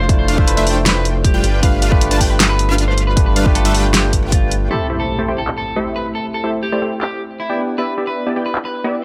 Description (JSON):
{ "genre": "future bass", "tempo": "156 BPM", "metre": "4/4", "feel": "half-time", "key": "A minor", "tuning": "A4 = 441 Hz", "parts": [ { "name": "electric guitar at the edge of break-up", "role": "melody", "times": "0.0-8.9 s", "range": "E4 to C5", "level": "-27 LUFS", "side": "equal", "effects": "sidechain pumping, delay" }, { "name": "barky tine electric piano", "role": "accompaniment", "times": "0.0-9.0 s", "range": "A3 to B5", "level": "-26 LUFS", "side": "equal", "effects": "sidechain pumping, delay" }, { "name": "unison pluck", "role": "arpeggios", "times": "0.0-4.7 s", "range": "E5 to A5", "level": "-30 LUFS", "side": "equal", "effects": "sidechain pumping" }, { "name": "supersaw stab", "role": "riff", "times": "0.0-9.0 s", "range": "G3 to A5", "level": "-24 LUFS", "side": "equal", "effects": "sidechain pumping, low-pass filter" }, { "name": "saturated sub bass", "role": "bass", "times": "0.0-4.7 s", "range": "F1 to G1", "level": "-20 LUFS", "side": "equal", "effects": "sidechain pumping" }, { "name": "electronic kick drum", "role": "drums", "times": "0.1-4.4 s", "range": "none", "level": "-18 LUFS", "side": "equal", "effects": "none" }, { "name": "pop drum kit", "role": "drums", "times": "0.1-8.6 s", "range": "crash cymbal, handclaps, hi-hat, snare drum", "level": "-20 LUFS", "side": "equal", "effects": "low-pass filter on hats, low-pass filter on snare, low-pass filter on cymbals" }, { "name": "impact", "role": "sound effects", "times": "4.7-6.2 s", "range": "none", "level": "-29 LUFS", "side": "equal", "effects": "none" } ], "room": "light reverb", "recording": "none", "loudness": "-16 LUFS", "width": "mono", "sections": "0.0-4.7 A section; 4.7-9.0 B section", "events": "drop 0.0-4.7; impact 4.7-6.2", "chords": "0.0 Dm7/F; 1.4 G7; 4.7 Am7; 7.6 Em7", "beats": "| 0.09 0.48 0.86 1.25 | 1.63 2.01 2.40 2.78 | 3.17 3.55 3.94 4.32 | 4.71 5.09 5.48 5.86 | 6.25 6.63 7.01 7.40 | 7.78 8.17 8.55 8.94" }